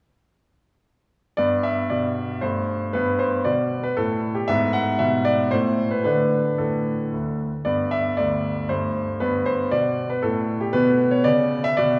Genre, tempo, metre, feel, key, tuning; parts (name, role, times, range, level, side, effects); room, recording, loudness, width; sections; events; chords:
classical-period piano sonatina; 116 BPM; 3/4; straight; G major; A4 = 444 Hz
bright concert grand piano; solo; 1.4-12.0 s; D2 to F#5; -22 LUFS; equal
wet church reverb, RT60 2.8 s; recorded in a church or concert hall; -22 LUFS; mono
1.4-12.0 A section
1.4 G; 2.4 Gsus24; 2.9 G; 4.5 G#m7b5; 5.5 N.C.; 6.1 D5; 7.7 G; 8.7 Gsus24; 9.2 G; 10.7 Bm